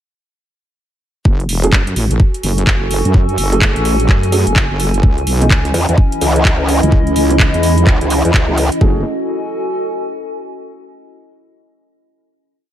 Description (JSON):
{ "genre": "bass house", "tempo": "127 BPM", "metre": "4/4", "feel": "swing 62% on 16ths", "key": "F# dorian", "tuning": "A4 = 444 Hz", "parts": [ { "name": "wobble bass", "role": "bass", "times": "1.3-9.0 s", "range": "E1 to F#2", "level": "-15 LUFS", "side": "equal", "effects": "chorus, tube saturation, sidechain pumping" }, { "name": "electronic kick drum", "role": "drums", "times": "1.3-8.9 s", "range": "none", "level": "-12 LUFS", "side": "equal", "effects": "none" }, { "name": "warbly tape-like pad", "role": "texture", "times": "1.9-10.7 s", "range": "C#4 to G#5", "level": "-20 LUFS", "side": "equal", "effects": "chorus, built-in reverb, sidechain pumping" }, { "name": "house drum kit", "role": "drums", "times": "1.4-8.8 s", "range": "handclaps, hi-hat", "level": "-19 LUFS", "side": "right 1 dB", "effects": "none" }, { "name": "dark concert grand piano", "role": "stabs", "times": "1.6-9.0 s", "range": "E3 to G#4", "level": "-21 LUFS", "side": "right 3 dB", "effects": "sidechain pumping, ping-pong delay" }, { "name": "dark analog pad", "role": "sustained chords", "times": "5.9-9.0 s", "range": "E3 to D#5", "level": "-23 LUFS", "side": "equal", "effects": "chorus, sidechain pumping" }, { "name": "growl bass", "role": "bass", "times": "5.7-8.7 s", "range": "C#2 to E2", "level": "-14 LUFS", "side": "equal", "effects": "chorus, overdrive, sidechain pumping" } ], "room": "light reverb", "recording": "none", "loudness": "-11 LUFS", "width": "side -11 dB against mid", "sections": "1.3-8.8 drop; 8.8-10.7 final chord", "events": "drop 1.3-8.8", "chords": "1.3 F#madd9; 5.0 C#madd9; 8.8 F#madd9", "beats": "| 1.25 1.73 2.20 2.67 | 3.14 3.62 4.09 4.56 | 5.03 5.50 5.98 6.45 | 6.92 7.39 7.87 8.34 | 8.81 9.28 9.76 10.23" }